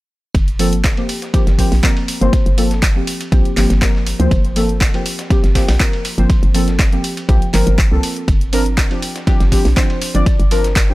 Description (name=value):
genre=deep house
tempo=121 BPM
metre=4/4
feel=swing 53% on 16ths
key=G minor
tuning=A4 = 440 Hz
part: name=hollow knocking FM bass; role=bass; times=0.3-10.9 s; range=G1 to D2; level=-16 LUFS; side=equal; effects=sidechain pumping
part: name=deep house drum kit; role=drums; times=0.3-10.9 s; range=handclaps, hi-hat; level=-23 LUFS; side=equal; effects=none
part: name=dusty soul sampler-style drum kit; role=drums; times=0.3-10.9 s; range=ride cymbal, snare drum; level=-29 LUFS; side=right 1 dB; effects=high-pass filter on cymbals, high-pass filter on snare, high-pass filter on room
part: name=electronic kick drum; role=drums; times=0.3-10.9 s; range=none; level=-15 LUFS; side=equal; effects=none
part: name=deep mellow chord stab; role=stabs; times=0.6-10.9 s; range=F3 to D5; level=-20 LUFS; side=equal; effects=chorus, sidechain pumping, analog delay
room=digital ambience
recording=dry, gritty hardware recording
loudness=-13 LUFS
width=side -18 dB against mid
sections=0.3-10.9 A section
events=none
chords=0.3 Gm11; 8.3 Bbadd9/G